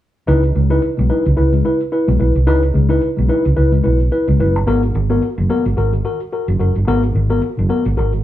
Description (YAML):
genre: disco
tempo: 109 BPM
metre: 4/4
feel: swing 56% on 16ths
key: C# dorian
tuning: A4 = 436 Hz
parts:
  - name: tine electric piano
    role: accompaniment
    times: 0.3-8.2 s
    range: G#2 to B4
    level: -17 LUFS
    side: left 2 dB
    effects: overdrive
  - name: hollow-body short-scale fingered electric bass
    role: bass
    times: 0.3-8.2 s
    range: F#1 to C#2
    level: -15 LUFS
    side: right 1 dB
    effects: none
room: moderate large studio reverb, RT60 0.9 s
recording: band playing live in one room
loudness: -13 LUFS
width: side -13 dB against mid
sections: 0.3-8.2 A section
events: none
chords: 0.3 C#m9; 4.7 G#m7